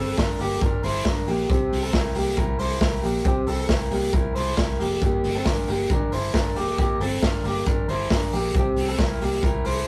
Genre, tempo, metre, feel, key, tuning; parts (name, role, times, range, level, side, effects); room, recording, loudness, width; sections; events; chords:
jangly indie pop; 136 BPM; 4/4; straight; G dorian; A4 = 441 Hz
electric guitar through a small old amp; arpeggios; 0.0-9.9 s; Bb3 to C5; -28 LUFS; equal
vintage muted fingered electric bass; bass; 0.0-9.8 s; F1 to C2; -31 LUFS; equal
raw garage drum kit; drums; 0.2-9.8 s; hi-hat, kick drum, snare drum; -26 LUFS; equal
moderate small room reverb, RT60 0.5 s; rough rehearsal-room recording; -23 LUFS; mono
0.0-9.9 A section
0.0 Gm; 1.5 C; 5.0 Gm; 8.6 C